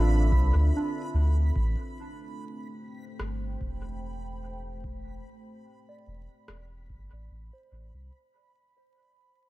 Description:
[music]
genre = ambient dub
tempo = 73 BPM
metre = 4/4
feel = swing 54% on 16ths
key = A minor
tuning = A4 = 439 Hz
[part]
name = deep dark ambient pad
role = sustained chords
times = 0.0-8.1 s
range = A3 to G5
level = -38 LUFS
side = right 1 dB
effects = chorus, built-in reverb
[part]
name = soft synth bell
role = arpeggios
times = 0.0-8.3 s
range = D4 to D5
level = -38 LUFS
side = right 2 dB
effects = chorus, phaser, low-pass filter, tape echo
[part]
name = soft dub sub bass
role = bass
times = 0.0-8.1 s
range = E1 to D2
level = -26 LUFS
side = equal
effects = tube saturation
[part]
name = backwards swelling texture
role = texture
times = 0.0-8.1 s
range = B5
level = -42 LUFS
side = right 3 dB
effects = built-in reverb
[part]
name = electronic kick drum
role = drums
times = 0.3-7.1 s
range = none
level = -32 LUFS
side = equal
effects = none
[part]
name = electronic rim click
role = drums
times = 3.2-6.7 s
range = none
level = -46 LUFS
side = left 1 dB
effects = dub echo
[sound]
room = light reverb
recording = vinyl crackle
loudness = -25 LUFS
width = side -18 dB against mid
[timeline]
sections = 0.0-8.1 A section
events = fade-out 0.0-8.1; filter sweep on sub bass 0.0-8.1; filter sweep on synth bell 0.0-8.1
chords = 0.0 Dm9; 1.6 Am9

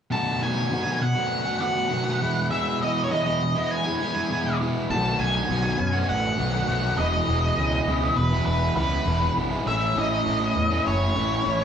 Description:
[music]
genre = rock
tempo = 101 BPM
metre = 4/4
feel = straight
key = B mixolydian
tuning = A4 = 440 Hz
[part]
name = octave-fuzz lead guitar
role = melody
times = 0.1-11.6 s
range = B4 to A5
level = -26 LUFS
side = equal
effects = distortion
[part]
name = overdriven semi-hollow guitar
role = riff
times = 0.1-11.6 s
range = E2 to F#4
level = -25 LUFS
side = equal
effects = none
[part]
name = fuzz picked electric bass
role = bass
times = 4.9-11.6 s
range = E1 to F#2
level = -26 LUFS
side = equal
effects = overdrive
[sound]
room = wet large studio reverb, RT60 1.3 s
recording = band playing live in one room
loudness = -21 LUFS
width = side -8 dB against mid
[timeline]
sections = 0.1-4.9 A section; 4.9-11.6 B section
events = none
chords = 0.1 B7; 2.2 Emaj7; 4.9 B7; 7.0 Emaj7; 9.7 A

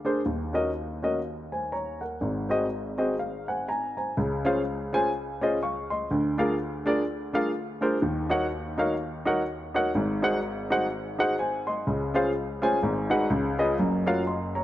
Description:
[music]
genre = gospel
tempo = 125 BPM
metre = 4/4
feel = swing 58% on 8ths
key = Db major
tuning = A4 = 440 Hz
[part]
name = dark upright piano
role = solo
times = 0.0-14.6 s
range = Gb1 to Db6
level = -25 LUFS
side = equal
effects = none
[sound]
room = moderate plate reverb, RT60 2.8 s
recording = dark, warm production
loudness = -25 LUFS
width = side -14 dB against mid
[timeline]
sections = 0.0-4.2 A section; 4.2-14.6 B section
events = upright piano fill 2.7-4.2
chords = 0.3 Ebm7; 2.2 Ab7; 4.2 Dbmaj7; 6.1 Bb7/D; 8.0 Ebm7; 9.9 Ab7; 11.9 Dbmaj7; 12.8 Abm7; 13.3 Db9; 13.8 Gbmaj7

